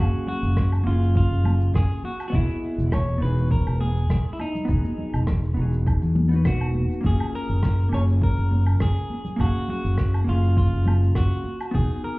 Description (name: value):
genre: sunset chillout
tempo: 102 BPM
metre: 4/4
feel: swing 53% on 16ths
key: F# major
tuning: A4 = 440 Hz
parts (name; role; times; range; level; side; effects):
- clean electric guitar; melody; 0.0-12.2 s; D#4 to C#5; -31 LUFS; equal; digital delay
- vintage hollow-body jazz guitar; accompaniment; 0.0-12.2 s; A#3 to E#5; -30 LUFS; left 1 dB; auto-pan
- fretless electric bass; bass; 0.0-11.9 s; E1 to E2; -20 LUFS; equal; none
- shaker, rim click and woodblock; drums; 0.1-12.0 s; none; -35 LUFS; equal; none
- congas; percussion; 0.3-11.6 s; none; -32 LUFS; left 1 dB; none
- electronic kick drum; drums; 0.6-11.9 s; none; -24 LUFS; equal; none
room: light reverb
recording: heard muffled through a wall, club reverb, EQ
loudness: -20 LUFS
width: side -22 dB against mid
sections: 0.0-12.2 A section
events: none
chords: 0.0 F#maj9; 2.0 Emaj9; 7.0 F#maj9; 11.4 Emaj9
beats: 0.57 1.16 1.74 | 2.33 2.92 3.51 4.10 | 4.69 5.27 5.86 6.45 | 7.04 7.63 8.21 8.80 | 9.39 9.98 10.57 11.16 | 11.74